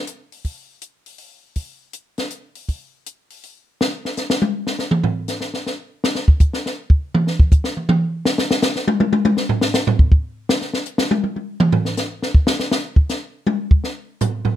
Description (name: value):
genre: jazz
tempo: 161 BPM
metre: 3/4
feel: swing 66% on 8ths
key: none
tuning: none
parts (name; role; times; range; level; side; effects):
- compact cocktail drum kit; drums; 0.1-14.5 s; hi-hat, kick drum, snare drum, toms; -16 LUFS; equal; none
room: moderate studio reverb, RT60 0.6 s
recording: rough home demo mix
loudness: -17 LUFS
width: side -12 dB against mid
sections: 0.0-3.8 A section; 3.8-12.7 B section; 12.7-14.6 B section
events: drum solo 3.8-14.6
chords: none